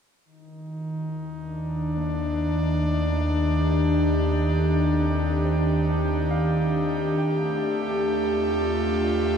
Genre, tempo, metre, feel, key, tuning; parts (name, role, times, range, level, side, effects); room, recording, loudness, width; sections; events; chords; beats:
ambient; 69 BPM; 4/4; straight; Eb lydian; A4 = 445 Hz
airy breathy pad; sustained chords; 0.2-9.4 s; Eb3 to G4; -23 LUFS; equal; chorus
deep rumbling drone; bass; 1.5-9.4 s; Eb2; -28 LUFS; equal; built-in reverb
overdriven tine electric piano; arpeggios; 2.0-9.4 s; A3 to G5; -38 LUFS; left 2 dB
moderate huge ambient reverb, RT60 8.4 s; dark, warm production; -22 LUFS; side -7 dB against mid
0.2-9.4 A section
0.2 Ebmaj7; 7.2 Fadd9/Eb
| 0.23 1.10 1.97 2.84 | 3.71 4.58 5.45 6.31 | 7.18 8.05 8.92